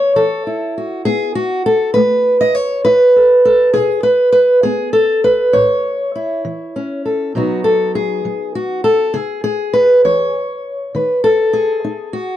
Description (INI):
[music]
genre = folk, solo fingerstyle acoustic guitar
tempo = 67 BPM (dotted quarters)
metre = 6/8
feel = straight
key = B mixolydian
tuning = A4 = 440 Hz
[part]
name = fingerpicked steel-string acoustic guitar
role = solo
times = 0.0-12.4 s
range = A2 to D#5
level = -12 LUFS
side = equal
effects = none
[sound]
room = little or no reverb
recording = dry, close 1970s-style studio recording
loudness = -12 LUFS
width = side -12 dB against mid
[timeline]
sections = 0.0-7.4 A section; 7.4-12.4 B section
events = none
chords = 0.2 Esus2; 2.0 Asus2; 3.8 N.C.; 5.6 A; 7.4 B; 9.2 C#m; 10.9 B/D#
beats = | 0.16 1.06 | 1.96 2.86 | 3.76 4.66 | 5.55 6.45 | 7.35 8.25 | 9.15 10.05 | 10.95 11.85